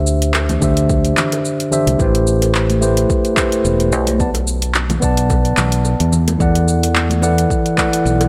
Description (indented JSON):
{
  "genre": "sunset chillout",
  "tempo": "109 BPM",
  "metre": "4/4",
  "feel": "swing 55% on 16ths",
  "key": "unclear",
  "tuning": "A4 = 441 Hz",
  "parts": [
    { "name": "mellow tine electric piano", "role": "accompaniment", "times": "0.0-8.3 s", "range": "D3 to A5", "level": "-19 LUFS", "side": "equal", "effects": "low-pass filter, delay" },
    { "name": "fingered electric bass", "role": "bass", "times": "0.0-8.3 s", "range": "E1 to E2", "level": "-19 LUFS", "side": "equal", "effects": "none" },
    { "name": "smooth R&B drum kit", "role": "drums", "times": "0.1-8.3 s", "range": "handclaps, hi-hat, shaker", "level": "-23 LUFS", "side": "equal", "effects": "overdrive" },
    { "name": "bongos and congas", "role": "percussion", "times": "0.3-8.3 s", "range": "none", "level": "-28 LUFS", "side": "equal", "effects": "none" },
    { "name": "electronic kick drum", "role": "drums", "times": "0.6-7.9 s", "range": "none", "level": "-22 LUFS", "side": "equal", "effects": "overdrive" }
  ],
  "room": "light reverb",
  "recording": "none",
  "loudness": "-16 LUFS",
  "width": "mono",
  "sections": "0.0-8.3 A section",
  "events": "filter sweep on tine electric piano 0.0-8.3",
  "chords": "0.0 D7sus4; 2.0 Am9; 4.2 Bm7",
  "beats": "0.34 0.90 1.45 | 2.00 2.55 3.10 3.65 | 4.20 4.75 5.30 5.85 | 6.40 6.95 7.50 8.05"
}